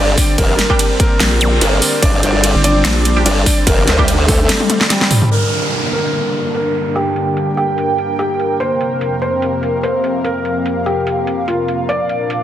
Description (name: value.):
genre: heavy wobble dubstep.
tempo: 146 BPM.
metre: 4/4.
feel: swing 54% on 16ths, half-time.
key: G minor.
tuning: A4 = 442 Hz.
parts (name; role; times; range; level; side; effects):
dark grand piano; melody; 0.0-12.4 s; G3 to D5; -19 LUFS; equal; tape echo.
supersaw pad; sustained chords; 0.0-12.4 s; F2 to D4; -22 LUFS; equal; sidechain pumping, low-pass filter.
formant-sweep wobble bass; bass; 0.0-4.5 s; F1 to D2; -15 LUFS; equal; chorus, overdrive.
airy breathy pad; texture; 0.0-12.4 s; Bb3 to G5; -22 LUFS; equal; chorus, sidechain pumping.
dubstep drum kit; drums; 0.2-12.4 s; hi-hat, ride cymbal, snare drum, toms; -17 LUFS; equal; low-pass filter on hats, low-pass filter on cymbals, low-pass filter on snare, low-pass filter on toms.
electronic kick drum; drums; 0.2-4.4 s; none; -15 LUFS; equal; none.
orchestra-hit-like synth stab; stabs; 0.7-4.0 s; G3 to G4; -21 LUFS; right 3 dB; built-in reverb, tape echo.
vowel-sweep wobble bass; bass; 1.2-3.2 s; G1 to Bb1; -14 LUFS; equal; chorus, overdrive.
zap and downlifter; sound effects; 1.4-1.5, 5.3-8.6 s; none; -21 LUFS; right 1 dB; none.
room: light reverb.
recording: dense, heavily limited modern master.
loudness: -12 LUFS.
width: side -11 dB against mid.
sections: 0.0-5.3 A section; 5.3-12.4 B section.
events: drop 0.0-5.3; drum fill 4.5-5.3.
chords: 0.0 G5; 5.3 Gm; 8.6 Fsus4; 11.9 Bb.